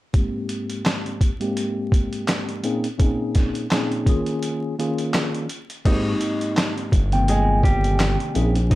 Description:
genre	hip hop, boom-bap hip-hop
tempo	84 BPM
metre	4/4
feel	swing 57% on 16ths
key	Ab major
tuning	A4 = 441 Hz
part	mellow tine electric piano	accompaniment	0.1-8.8 s	Ab2 to G5	-24 LUFS	left 1 dB	medium stereo tremolo, high-pass filter, low-pass filter, plate reverb
part	boom bap sampler-style drum kit	drums	0.1-8.8 s	crash cymbal, handclaps, hi-hat, kick drum, snare drum	-22 LUFS	equal	none
part	nylon-string guitar	melody	5.9-8.8 s	G3 to Eb5	-25 LUFS	equal	high-pass filter, low-pass filter, tape echo
part	smooth synth bass	bass	5.9-8.8 s	G1 to Bb1	-21 LUFS	equal	none
room	light reverb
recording	vinyl crackle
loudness	-19 LUFS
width	side -17 dB against mid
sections	0.1-5.9 A section; 5.9-8.8 B section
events	filter sweep on tine electric piano 0.1-5.9; break 4.4-5.9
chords	0.1 Abmaj7; 2.6 Bbm11; 4.1 Eb7sus4; 5.9 Abmaj7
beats	| 0.14 0.85 1.57 2.28 | 3.00 3.71 4.42 5.14 | 5.85 6.57 7.28 8.00 | 8.71

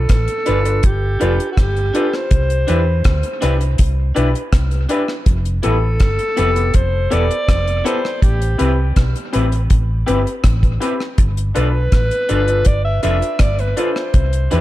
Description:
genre	lovers rock reggae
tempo	81 BPM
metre	4/4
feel	straight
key	unclear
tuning	A4 = 442 Hz
part	breathy alto saxophone	melody	0.0-14.6 s	F#4 to E5	-22 LUFS	equal	tape echo
part	hollow-body short-scale fingered electric bass	bass	0.0-14.6 s	E1 to E2	-17 LUFS	equal	none
part	deep reggae drum kit	drums	0.1-14.6 s	hi-hat, kick drum, rim click	-16 LUFS	equal	gated reverb
part	clear concert grand piano	accompaniment	0.5-14.6 s	B3 to B4	-23 LUFS	left 4 dB	none
part	electric guitar through a small old amp	stabs	0.5-14.6 s	C4 to B4	-26 LUFS	right 3 dB	spring reverb
room	light reverb, small room ambience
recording	none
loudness	-14 LUFS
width	side -15 dB against mid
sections	0.0-14.6 A section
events	none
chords	0.0 G7; 2.3 Cmaj9; 5.3 Fmaj9#11; 8.2 Am9; 11.2 G7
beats	0.09 0.83 1.57 | 2.31 3.05 3.79 4.53 | 5.26 6.00 6.74 7.48 | 8.22 8.96 9.70 10.44 | 11.18 11.92 12.66 13.40 | 14.14

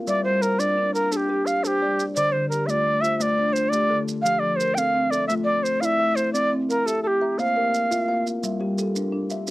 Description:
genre	southern african traditional, mbira-style interlocking cycle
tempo	115 BPM (dotted quarters)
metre	12/8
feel	straight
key	G dorian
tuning	A4 = 440 Hz
part	kalimba	arpeggios	0.0-9.5 s	D3 to F5	-26 LUFS	left 2 dB	cassette tape
part	marimba with soft mallets	arpeggios	0.0-9.5 s	D3 to Bb5	-30 LUFS	right 2 dB	cassette tape
part	bright reedy Native American-style cedar flute	melody	0.1-8.3 s	G4 to G5	-21 LUFS	equal	cassette tape
part	maracas	percussion	0.1-9.5 s	none	-34 LUFS	right 4 dB	none
room	light reverb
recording	home recording on cassette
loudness	-20 LUFS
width	side -18 dB against mid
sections	0.0-8.4 A section; 8.4-9.5 B section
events	none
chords	0.1 Gm; 2.2 Dm; 4.3 F; 5.3 A5; 6.3 C; 7.4 Bb5; 8.4 Gm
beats	| 0.08 0.60 1.12 1.64 | 2.17 2.69 3.21 3.73 | 4.25 4.78 5.30 5.82 | 6.34 6.87 7.39 7.91 | 8.43 8.95 9.47

